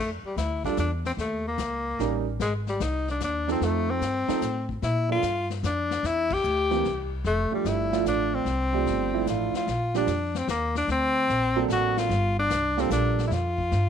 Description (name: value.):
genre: jazz, small-group swing and bop.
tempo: 148 BPM.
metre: 3/4.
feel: swing 67% on 8ths.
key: F major, Bb major from 9.7 s.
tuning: A4 = 440 Hz.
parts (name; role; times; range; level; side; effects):
clear tenor saxophone; melody; 0.0-13.9 s; G3 to G4; -26 LUFS; left 3 dB; none.
upright bass; bass; 0.0-13.9 s; F1 to Bb2; -29 LUFS; equal; none.
vintage brush drum kit; drums; 0.4-13.9 s; brushed snare drum, hi-hat, kick drum, ride cymbal, snare drum; -36 LUFS; left 9 dB; none.
warm concert grand piano; accompaniment; 0.7-13.3 s; E3 to Bb4; -28 LUFS; right 16 dB; none.
room: light reverb.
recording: 1960s-style stereo with parts hard left and right.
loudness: -24 LUFS.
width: side -8 dB against mid.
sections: 0.0-9.7 A section; 9.7-13.9 B section.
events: band accent 6.2.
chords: 0.0 F5; 1.2 Eb7; 2.4 Ab; 3.6 F7; 4.8 Bb; 6.0 C; 7.2 F69; 9.7 Bb6; 10.9 D7b13; 12.1 Gm9; 13.3 Fsus2.